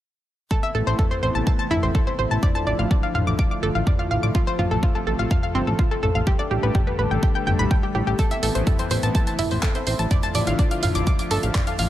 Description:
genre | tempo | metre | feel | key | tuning
melodic techno | 125 BPM | 4/4 | straight | A minor | A4 = 440 Hz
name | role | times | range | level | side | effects
lush unison pad | sustained chords | 0.5-11.9 s | C3 to A4 | -28 LUFS | left 1 dB | chorus, vintage 12-bit sampler grit, sidechain pumping
analog pluck | arpeggios | 0.5-11.9 s | C4 to D6 | -25 LUFS | equal | chorus, sidechain pumping, dub echo
electronic kick drum | drums | 0.5-11.6 s | none | -21 LUFS | equal | none
fat analog bass | bass | 0.7-11.9 s | G1 to A1 | -24 LUFS | equal | sidechain pumping
house drum kit | drums | 1.0-11.9 s | handclaps, hi-hat, toms | -28 LUFS | equal | none
room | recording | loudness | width
digital ambience | lossy compression artefacts | -19 LUFS | side -13 dB against mid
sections
0.5-11.9 A section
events
none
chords
0.5 Amadd9; 2.4 Dmadd9/A; 4.3 F/A; 6.3 Gsus2/A; 8.2 Amadd9; 10.1 Dmadd9/A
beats
| 0.51 0.99 1.47 1.95 | 2.43 2.91 3.39 3.87 | 4.35 4.83 5.31 5.79 | 6.27 6.75 7.23 7.71 | 8.19 8.67 9.15 9.63 | 10.11 10.59 11.07 11.55

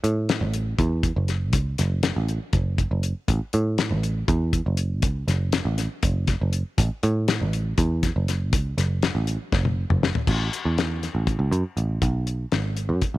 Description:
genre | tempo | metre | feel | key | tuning
psychedelic rock | 240 BPM (eighths) | 7/8 | straight | A major | A4 = 437 Hz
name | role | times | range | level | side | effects
picked electric bass | bass | 0.0-13.2 s | F#1 to A2 | -23 LUFS | right 1 dB | none
damped 70s drum kit | drums | 0.0-13.1 s | crash cymbal, hi-hat, kick drum, snare drum, toms | -25 LUFS | left 2 dB | none
room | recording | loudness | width
little or no reverb | 1960s-style stereo | -21 LUFS | side -16 dB against mid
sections
0.0-10.3 A section; 10.3-13.2 B section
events
drum fill 9.5-10.3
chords
none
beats
0.04 0.29 0.54 0.79 1.04 1.29 | 1.54 1.79 2.04 2.29 2.54 2.79 3.04 | 3.29 3.54 3.79 4.04 4.29 4.54 4.78 | 5.03 5.28 5.53 5.78 6.03 6.28 6.53 | 6.78 7.03 7.28 7.53 7.78 8.03 8.28 | 8.53 8.78 9.03 9.28 9.52 9.77 10.02 | 10.27 10.52 10.77 11.02 11.27 11.52 11.77 | 12.02 12.27 12.53 12.78 13.03

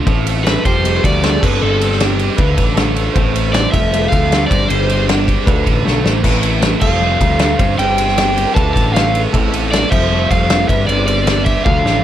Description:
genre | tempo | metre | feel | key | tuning
indie rock | 155 BPM | 4/4 | straight | G mixolydian | A4 = 437 Hz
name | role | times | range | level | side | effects
overdriven tine electric piano | second line | 0.0-12.0 s | G4 to C5 | -26 LUFS | right 3 dB | fast tremolo
scooped high-gain guitar | riff | 0.0-12.0 s | G2 to G4 | -23 LUFS | right 7 dB | distortion, wide subtle chorus, tape echo
twelve-string electric guitar | riff | 0.0-12.0 s | G2 to A4 | -22 LUFS | left 5 dB | none
growling picked electric bass | bass | 0.1-12.0 s | F1 to D2 | -18 LUFS | equal | overdrive
loose indie drum kit | drums | 0.1-11.9 s | crash cymbal, kick drum, ride cymbal, snare drum, splash cymbal, toms | -16 LUFS | equal | none
crunchy overdriven guitar | melody | 0.4-12.0 s | A4 to A5 | -18 LUFS | equal | none
room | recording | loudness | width
little or no reverb | none | -12 LUFS | side -11 dB against mid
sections
0.1-12.0 A section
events
drum fill 5.8-6.2, 11.7-12.0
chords
0.1 Am; 0.6 Fadd9; 1.4 Gsus4; 2.4 Dm; 3.1 Am; 3.7 Fadd9; 4.5 Gsus4; 5.5 Dm; 6.2 Am; 6.8 Fadd9; 7.6 Gsus4; 8.6 Dm; 9.3 Am; 9.9 Fadd9; 10.7 Gsus4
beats
| 0.06 0.45 0.83 1.22 | 1.61 1.99 2.38 2.76 | 3.15 3.54 3.92 4.31 | 4.69 5.08 5.46 5.85 | 6.24 6.62 7.01 7.39 | 7.78 8.17 8.55 8.94 | 9.33 9.71 10.10 10.49 | 10.88 11.27 11.65

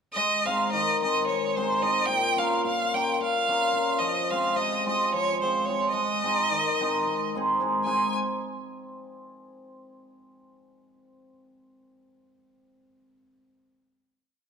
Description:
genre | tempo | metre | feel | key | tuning
balkan folk | 217 BPM (eighths) | 7/8 | straight | Ab major | A4 = 440 Hz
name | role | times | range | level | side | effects
clear violin | melody | 0.1-8.1 s | C5 to Ab5 | -26 LUFS | equal | none
cimbalom | accompaniment | 0.2-8.2 s | Bb2 to Bb4 | -26 LUFS | equal | none
room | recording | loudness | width
wet scoring stage reverb, RT60 1.5 s | none | -23 LUFS | side -6 dB against mid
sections
0.1-7.9 A section; 7.9-9.8 final chord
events
none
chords
0.1 Ab; 2.1 Bbm; 4.0 Fm; 5.9 Ab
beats
| 0.13 0.41 0.69 0.96 1.24 1.51 1.79 | 2.06 2.34 2.62 2.89 3.17 3.44 3.72 | 3.99 4.27 4.54 4.82 5.09 5.37 5.65 | 5.92 6.20 6.48 6.75 7.03 7.31 7.58 | 7.86 8.14

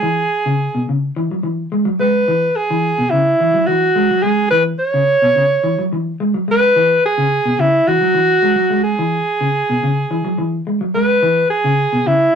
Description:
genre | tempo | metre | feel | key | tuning
afrobeat | 107 BPM | 4/4 | straight | C# minor | A4 = 441 Hz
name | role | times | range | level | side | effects
clear alto saxophone | melody | 0.0-12.4 s | E4 to C#5 | -14 LUFS | right 1 dB | none
electric guitar at the edge of break-up | arpeggios | 0.0-12.3 s | B2 to G#3 | -18 LUFS | left 1 dB | none
room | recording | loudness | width
moderate studio reverb, RT60 0.6 s | rough rehearsal-room recording, warm saturation | -13 LUFS | side -7 dB against mid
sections
0.0-12.4 A section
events
none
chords
0.0 C#m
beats
| 0.05 0.60 1.16 1.72 | 2.28 2.84 3.40 3.96 | 4.51 5.07 5.63 6.19 | 6.75 7.31 7.87 8.43 | 8.98 9.54 10.10 10.66 | 11.22 11.78 12.33

